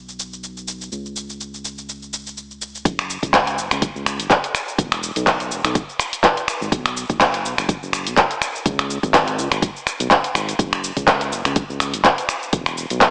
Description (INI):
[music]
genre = afro house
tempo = 124 BPM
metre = 4/4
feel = swing 55% on 16ths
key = unclear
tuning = A4 = 444 Hz
[part]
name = round analog bass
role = bass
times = 0.0-13.1 s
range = E1 to C#2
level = -31 LUFS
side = equal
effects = sidechain pumping
[part]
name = house drum kit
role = drums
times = 0.1-13.1 s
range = finger snaps, handclaps, hi-hat, shaker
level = -21 LUFS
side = equal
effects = none
[part]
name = electronic kick drum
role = drums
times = 2.9-13.1 s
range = none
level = -24 LUFS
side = equal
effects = none
[sound]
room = wet lush hall reverb, RT60 1.9 s, digital ambience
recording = small speaker sound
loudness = -20 LUFS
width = mono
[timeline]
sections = 0.0-2.9 A section; 2.9-13.1 B section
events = drop 2.9-13.1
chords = none